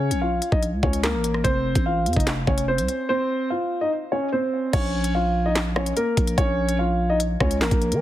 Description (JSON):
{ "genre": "hip hop, drill", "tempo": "146 BPM", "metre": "4/4", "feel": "half-time", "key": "Bb harmonic minor", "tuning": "A4 = 440 Hz", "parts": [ { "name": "dark concert grand piano", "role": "melody", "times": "0.0-8.0 s", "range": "Bb3 to F5", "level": "-23 LUFS", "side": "equal", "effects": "low-pass filter, ping-pong delay" }, { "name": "growling 808-style bass", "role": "bass", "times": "0.0-8.0 s", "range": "F1 to F3", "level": "-24 LUFS", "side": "equal", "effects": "none" }, { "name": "drill drum kit", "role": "drums", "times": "0.1-8.0 s", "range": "crash cymbal, handclaps, hi-hat, kick drum, rim click, snare drum", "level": "-24 LUFS", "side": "equal", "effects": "none" } ], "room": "digital ambience", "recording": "heavily compressed radio sound, multiband compression", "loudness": "-20 LUFS", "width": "side -13 dB against mid", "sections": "0.0-4.7 A section; 4.7-8.0 B section", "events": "break 3.1-4.7", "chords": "0.0 Bbm; 1.4 F; 4.7 Bbm", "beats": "0.21 0.62 1.03 | 1.45 1.86 2.27 2.68 | 3.09 3.50 3.91 4.32 | 4.73 5.14 5.55 5.97 | 6.38 6.79 7.20 7.61" }